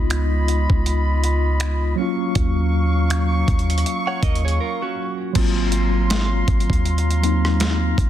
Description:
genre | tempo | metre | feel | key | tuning
contemporary R&B | 80 BPM | 4/4 | swing 58% on 16ths | unclear | A4 = 440 Hz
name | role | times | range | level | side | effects
mellow tine electric piano | accompaniment | 0.0-8.1 s | Gb3 to F4 | -24 LUFS | left 1 dB | medium stereo tremolo
mellow woodwind section | sustained chords | 0.0-8.1 s | Gb3 to Db6 | -27 LUFS | equal | sidechain pumping
warm 808-style bass | bass | 0.0-8.1 s | Ab1 to Eb2 | -20 LUFS | equal | none
dusty soul sampler-style drum kit | drums | 0.1-8.1 s | crash cymbal, finger snaps, hi-hat, kick drum, rim click, snare drum | -22 LUFS | equal | overdrive
direct-recorded clean electric guitar | arpeggios | 4.1-5.3 s | Db4 to Gb5 | -27 LUFS | right 8 dB | digital delay
room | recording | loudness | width
little or no reverb | dense, heavily limited modern master | -17 LUFS | side -11 dB against mid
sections
0.0-5.4 A section; 5.4-8.1 B section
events
break 4.6-5.4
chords
0.0 Db9; 2.0 Ebm9; 5.4 Ab13

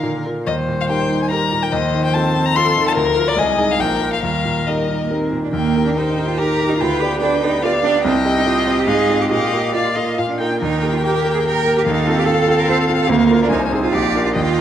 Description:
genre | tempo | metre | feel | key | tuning
quick classical-period movement for piano quartet | 143 BPM | 3/4 | rubato | Eb major | A4 = 440 Hz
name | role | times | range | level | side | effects
rich violin | melody | 0.0-14.6 s | Bb4 to C6 | -22 LUFS | left 6 dB | none
rich cello | second line | 0.0-14.6 s | D3 to C5 | -21 LUFS | right 6 dB | none
rich violin | second line | 0.0-14.6 s | Ab4 to G5 | -24 LUFS | left 3 dB | none
bright concert grand piano | accompaniment | 0.0-14.6 s | Bb1 to Eb5 | -19 LUFS | equal | none
room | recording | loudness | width
wet recital hall reverb, RT60 1.6 s | none | -15 LUFS | side -10 dB against mid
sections
0.0-5.5 A section; 5.5-14.6 B section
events
none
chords
0.0 Bb; 0.5 Eb; 1.7 F7/Eb; 3.0 Bb/D; 3.4 Ab/C; 3.8 Bb5; 4.2 Eb; 6.8 G7/D; 8.0 Cm; 8.9 Fm7/Ab; 9.3 Bbsus4; 10.2 Bb5; 10.6 Eb; 11.9 F7/Eb; 13.1 Bb/D; 13.5 Ab/C; 13.9 Bb

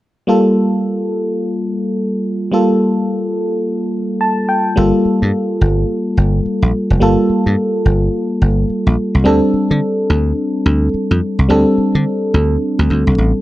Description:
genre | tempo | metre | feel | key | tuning
R&B, new jack swing | 107 BPM | 4/4 | swing 60% on 16ths | G minor | A4 = 441 Hz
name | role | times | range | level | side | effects
FM electric piano | accompaniment | 0.3-13.4 s | G3 to A5 | -14 LUFS | equal | chorus
dry thumbed slap bass | bass | 4.8-13.3 s | F1 to D3 | -14 LUFS | equal | none
room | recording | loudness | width
light reverb | dark, warm production | -13 LUFS | side -16 dB against mid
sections
0.3-4.8 A section; 4.8-13.4 B section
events
FM electric piano fill 3.9-4.8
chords
0.3 Gm9; 9.3 D7sus4

